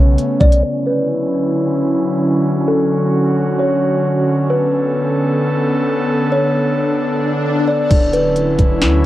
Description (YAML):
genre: hip hop, atmospheric cloud-rap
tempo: 132 BPM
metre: 4/4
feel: half-time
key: D major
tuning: A4 = 440 Hz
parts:
  - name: kalimba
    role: melody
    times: 0.0-8.8 s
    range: A4 to D5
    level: -20 LUFS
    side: left 1 dB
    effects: low-pass filter, cassette tape, analog delay
  - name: airy breathy pad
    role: sustained chords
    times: 0.0-9.1 s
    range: C#3 to A4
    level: -16 LUFS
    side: equal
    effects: chorus, sidechain pumping, low-pass filter, cassette tape
  - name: clean 808-style bass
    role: bass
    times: 0.0-0.6, 7.9-9.0 s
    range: D1 to D2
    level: -16 LUFS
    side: equal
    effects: none
  - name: trap drum kit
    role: drums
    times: 0.2-0.6, 7.9-8.9 s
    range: crash cymbal, hi-hat, kick drum, snare drum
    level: -14 LUFS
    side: equal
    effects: overdrive, cassette tape
  - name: swell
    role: sound effects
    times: 6.8-7.9 s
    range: none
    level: -25 LUFS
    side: left 4 dB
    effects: none
room: light reverb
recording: home recording on cassette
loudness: -13 LUFS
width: side -14 dB against mid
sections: 0.6-7.9 A section; 7.9-9.1 B section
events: filter sweep 0.6-7.9; swell 6.8-7.9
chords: 0.0 Bm9; 0.6 Dmaj9; 4.3 Bm9; 7.9 Dmaj9